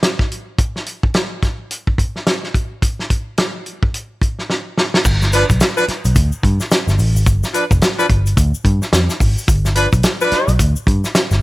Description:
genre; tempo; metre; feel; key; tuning
funk; 108 BPM; 4/4; swing 60% on 16ths; G mixolydian; A4 = 440 Hz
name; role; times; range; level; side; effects
warm soul drum kit; drums; 0.0-11.4 s; crash cymbal, hi-hat, kick drum, snare drum; -16 LUFS; equal; none
tube shaker; percussion; 5.0-11.4 s; none; -30 LUFS; left 6 dB; none
vintage muted picked electric bass; bass; 5.1-11.4 s; F1 to G2; -15 LUFS; equal; none
warm horn section; second line; 5.3-10.5 s; F3 to B4; -17 LUFS; equal; none
room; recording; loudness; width
light reverb, studio reverb; none; -14 LUFS; side -19 dB against mid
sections
0.0-5.0 A section; 5.0-11.4 B section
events
drum fill 4.5-5.0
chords
none

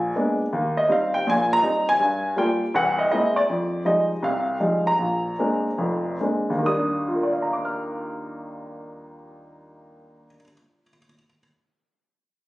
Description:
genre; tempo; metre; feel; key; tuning
solo jazz; 138-162 BPM; 4/4; swing 65% on 8ths; Eb major; A4 = 439 Hz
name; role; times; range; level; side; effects
warm baby grand piano; solo; 0.0-11.4 s; F1 to F6; -21 LUFS; equal; none
room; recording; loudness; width
moderate studio reverb, RT60 0.9 s; recorded on a phone in the room, studio reverb, compression; -20 LUFS; side -18 dB against mid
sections
0.0-3.5 A section; 3.5-6.6 B section; 6.6-10.1 C section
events
slowing down 3.5-6.6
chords
0.0 Bb7b9; 0.5 Eb6; 2.0 Gm7; 2.7 Caug7; 3.5 Fm9; 5.0 Bb9; 6.6 Ebmaj7

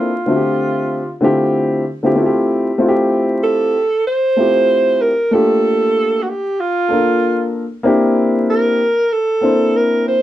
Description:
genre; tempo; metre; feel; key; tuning
hip hop; 95 BPM; 4/4; swing 60% on 16ths; F major; A4 = 441 Hz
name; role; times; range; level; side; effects
breathy alto saxophone; melody; 0.0-10.2 s; F4 to C5; -15 LUFS; right 2 dB; none
dark upright piano; accompaniment; 0.0-10.2 s; D3 to E5; -15 LUFS; left 1 dB; none
room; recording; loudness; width
moderate studio ambience, RT60 0.5 s; vinyl crackle; -13 LUFS; side -13 dB against mid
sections
0.0-2.8 A section; 2.8-10.2 B section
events
none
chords
0.3 Dm11; 2.2 Fmaj9; 5.3 Gm9; 7.9 C9

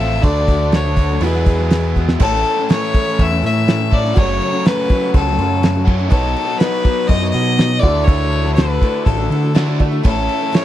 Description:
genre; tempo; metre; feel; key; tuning
folk rock and heartland rock; 122 BPM; 4/4; straight; A major; A4 = 440 Hz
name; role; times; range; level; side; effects
clear fiddle; melody; 0.0-10.6 s; A4 to E5; -20 LUFS; left 2 dB; none
picked steel-string acoustic guitar; accompaniment; 0.0-10.6 s; E2 to C#5; -25 LUFS; left 6 dB; none
warm upright piano; accompaniment; 0.0-10.6 s; C4 to D5; -30 LUFS; right 8 dB; none
mellow tonewheel organ; sustained chords; 0.0-10.6 s; D4 to E6; -32 LUFS; right 1 dB; none
biting overdriven guitar; riff; 0.0-10.6 s; E2 to A4; -22 LUFS; equal; spring reverb
deep dub picked electric bass; bass; 0.0-10.3 s; F#1 to D3; -18 LUFS; equal; none
damped 70s drum kit; drums; 0.2-10.6 s; crash cymbal, hi-hat, kick drum, snare drum; -17 LUFS; equal; none
room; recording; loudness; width
little or no reverb; dry, close 1970s-style studio recording; -13 LUFS; side -12 dB against mid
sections
0.0-2.2 A section; 2.2-10.6 B section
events
drum fill 2.0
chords
0.2 D; 1.2 Eadd9; 2.2 A; 4.2 F#m; 6.1 Badd9; 7.8 Dadd9; 10.0 A

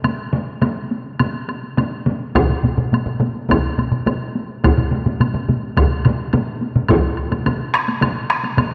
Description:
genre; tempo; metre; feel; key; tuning
japanese traditional, taiko drum ensemble; 105 BPM; 4/4; straight; none; none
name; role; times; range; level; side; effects
solo taiko drums; percussion; 0.0-8.7 s; none; -24 LUFS; equal; none
taiko ensemble; percussion; 0.0-8.7 s; none; -26 LUFS; equal; none
woodblock; percussion; 0.0-8.7 s; none; -30 LUFS; equal; none
taiko ensemble; percussion; 2.4-8.7 s; none; -24 LUFS; equal; none
taiko ensemble; percussion; 2.4-7.0 s; none; -21 LUFS; equal; none
room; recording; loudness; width
moderate concert hall reverb, RT60 2.1 s; none; -19 LUFS; mono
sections
0.0-6.9 A section; 6.9-8.7 B section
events
speeding up 0.0-8.7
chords
none

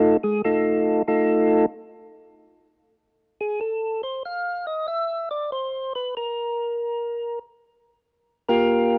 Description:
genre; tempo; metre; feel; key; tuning
jazz; 94 BPM; 4/4; swing 67% on 8ths; F mixolydian; A4 = 445 Hz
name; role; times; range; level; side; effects
percussive tonewheel organ; solo; 0.0-9.0 s; Ab3 to F5; -23 LUFS; equal; slow rotary speaker
room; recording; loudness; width
little or no reverb; dry, close 1970s-style studio recording; -24 LUFS; mono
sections
0.0-9.0 A section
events
tonewheel organ solo 0.0-9.0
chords
0.0 F7; 4.9 N.C.; 7.4 Bb5

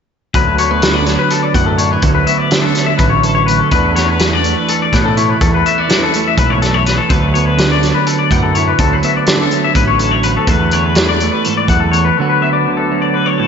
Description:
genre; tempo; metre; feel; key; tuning
math rock and midwest emo; 249 BPM (eighths); 7/8; straight; D major; A4 = 440 Hz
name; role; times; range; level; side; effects
twangy electric guitar; arpeggios; 0.3-13.5 s; A4 to F#5; -15 LUFS; left 7 dB; lush chorus, analog delay, slapback echo
growling picked electric bass; bass; 0.3-12.1 s; A1 to A2; -17 LUFS; equal; overdrive
loose indie drum kit; drums; 0.3-12.0 s; hi-hat, kick drum, snare drum; -16 LUFS; equal; none
clean electric guitar; accompaniment; 0.4-13.5 s; D2 to F#4; -16 LUFS; right 6 dB; none
room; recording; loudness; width
moderate lush hall reverb, RT60 2.2 s; big arena sound, nothing above 7.7 kHz; -11 LUFS; side -6 dB against mid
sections
0.4-13.5 A section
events
none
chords
0.4 D6; 3.7 E7sus4; 7.1 D69; 10.5 E7sus4; 12.2 D6

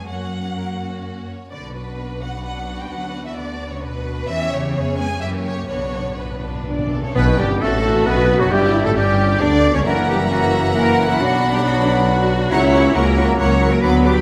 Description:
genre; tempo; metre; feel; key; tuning
classical, dramatic, fast romantic movement for symphony orchestra; 122-139 BPM; 3/4; rubato; B minor; A4 = 440 Hz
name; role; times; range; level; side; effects
warm symphonic violin section; melody; 0.0-14.2 s; F#4 to D6; -31 LUFS; equal; none
rich symphonic violin section; second line; 0.0-14.2 s; D4 to F#5; -33 LUFS; equal; none
rich studio viola section; accompaniment; 0.0-14.2 s; A#3 to F#4; -28 LUFS; equal; none
clear symphonic cello section; bass; 0.0-14.2 s; B2 to D5; -29 LUFS; equal; none
rich symphonic double bass section; bass; 0.0-14.2 s; F#1 to F#2; -26 LUFS; equal; none
cymbal swell and tam-tam; percussion; 4.3-8.9 s; none; -34 LUFS; equal; none
timpani; percussion; 5.7-7.8 s; B2; -30 LUFS; equal; none
mellow French horn section; sustained chords; 6.7-14.2 s; E3 to D4; -26 LUFS; equal; none
bright clarinet; second line; 7.2-14.2 s; F#3 to E4; -28 LUFS; equal; none
concert flute; second line; 7.2-14.1 s; F#4 to B5; -28 LUFS; equal; none
warm oboe; second line; 7.2-14.2 s; F#4 to F#5; -28 LUFS; equal; none
mellow bassoon; accompaniment; 7.2-14.2 s; E3 to D4; -27 LUFS; equal; none
warm trombone section; sustained chords; 7.2-14.2 s; F#2 to B3; -25 LUFS; equal; none
dark tuba; bass; 7.2-14.2 s; F#1 to D2; -25 LUFS; equal; none
room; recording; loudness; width
wet scoring stage reverb, RT60 1.8 s; none; -18 LUFS; mono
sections
0.0-7.2 A section; 7.2-14.2 B section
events
timpani fill 5.7-7.2; band accent 7.2-7.6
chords
0.1 F#; 1.5 Bm; 2.9 Bm/D; 4.3 C#m7b5/E; 4.8 C#7/E#; 5.2 F#7b9; 5.7 Bm; 7.2 B5; 8.5 Em/G; 9.9 F#7; 11.2 Bm; 12.5 F#7/C#

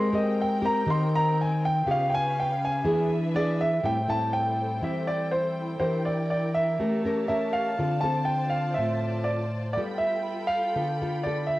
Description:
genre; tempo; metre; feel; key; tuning
bossa nova; 121 BPM; 4/4; straight; A minor from 3.8 s; A4 = 440 Hz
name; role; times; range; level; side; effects
warm grand piano; melody; 0.0-11.6 s; C5 to C6; -27 LUFS; right 1 dB; none
nylon-string guitar; accompaniment; 0.0-11.6 s; A2 to Bb4; -27 LUFS; left 1 dB; cassette tape
warm studio string section; sustained chords; 0.0-11.6 s; C4 to B5; -36 LUFS; left 1 dB; cassette tape
room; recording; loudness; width
moderate spring reverb, RT60 1.1 s, studio reverb; home recording on cassette; -24 LUFS; side -17 dB against mid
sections
0.0-3.8 A section; 3.8-11.6 B section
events
grand piano solo 0.0-3.8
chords
0.0 Abmaj9; 1.9 Db7#11; 2.8 E7; 3.8 Am7; 5.8 Em7b5; 6.8 A7b9; 7.8 Dm7; 9.8 G9

